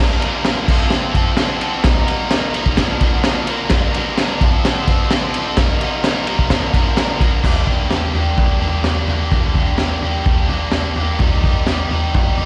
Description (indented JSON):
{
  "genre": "garage rock duo or trio",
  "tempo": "129 BPM",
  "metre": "4/4",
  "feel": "straight",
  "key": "G minor",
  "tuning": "A4 = 436 Hz",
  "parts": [
    { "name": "biting overdriven guitar", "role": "riff", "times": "0.0-12.5 s", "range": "G2 to Bb4", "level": "-22 LUFS", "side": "equal", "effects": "none" },
    { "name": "crunchy breakbeat drum kit", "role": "drums", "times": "0.2-12.5 s", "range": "crash cymbal, kick drum, ride cymbal, snare drum, toms", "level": "-18 LUFS", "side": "equal", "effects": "none" }
  ],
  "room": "light reverb",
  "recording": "live gig heard through the venue's PA, recital hall reverb",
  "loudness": "-17 LUFS",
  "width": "mono",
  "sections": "0.0-7.4 A section; 7.4-12.5 B section",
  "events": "none",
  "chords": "0.0 Gm; 0.7 F; 1.9 Eb/G; 2.8 Bb; 3.7 Gm; 4.4 F; 5.6 Eb/G; 6.5 Bb; 7.4 Gm; 11.2 Cm"
}